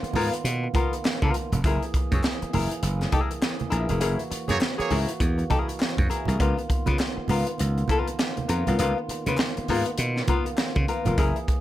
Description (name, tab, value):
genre	funk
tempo	101 BPM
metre	4/4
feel	swing 60% on 16ths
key	Db mixolydian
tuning	A4 = 439 Hz
part	archtop guitar, miked and amplified	accompaniment	0.0-11.5 s	Cb4 to Db5	-28 LUFS	left 4 dB	wah
part	percussive tonewheel organ	sustained chords	0.0-11.6 s	Eb3 to Ab4	-34 LUFS	right 3 dB	overdrive, lush chorus
part	slap bass	bass	0.0-11.5 s	F1 to Db3	-25 LUFS	equal	none
part	crisp fusion drum kit	drums	0.0-11.6 s	hi-hat, kick drum, snare drum	-26 LUFS	equal	none
part	congas	percussion	0.1-11.2 s	none	-34 LUFS	right 5 dB	none
part	group handclap	percussion	1.0-10.7 s	none	-40 LUFS	left 1 dB	none
part	clear horn section	second line	4.5-5.0 s	Bb3 to Db5	-28 LUFS	right 4 dB	none
room	light reverb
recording	none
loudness	-22 LUFS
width	side -14 dB against mid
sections	0.0-11.6 A section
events	band accent 4.0-6.4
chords	0.0 Db13 (rootless); 1.6 Gb9; 6.4 Db13